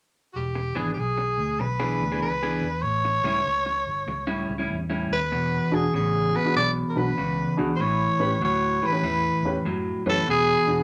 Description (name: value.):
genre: blues.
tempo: 97 BPM.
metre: 4/4.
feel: swing 66% on 8ths.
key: E mixolydian.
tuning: A4 = 440 Hz.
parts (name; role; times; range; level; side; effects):
growling tenor saxophone; melody; 0.3-10.8 s; F#4 to D5; -27 LUFS; equal; none.
vintage muted fingered electric bass; bass; 0.4-10.8 s; E1 to F#2; -33 LUFS; equal; none.
electric guitar through a small old amp; riff; 0.6-10.8 s; E2 to G#4; -30 LUFS; equal; none.
warm upright piano; accompaniment; 5.7-10.8 s; C#4 to B4; -31 LUFS; equal; none.
room: wet club reverb, RT60 0.6 s.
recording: none.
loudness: -25 LUFS.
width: mono.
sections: 0.4-5.3 A section; 5.3-10.8 B section.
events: none.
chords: 0.4 E7; 2.8 A7; 5.3 E7; 7.8 A7; 10.3 E7.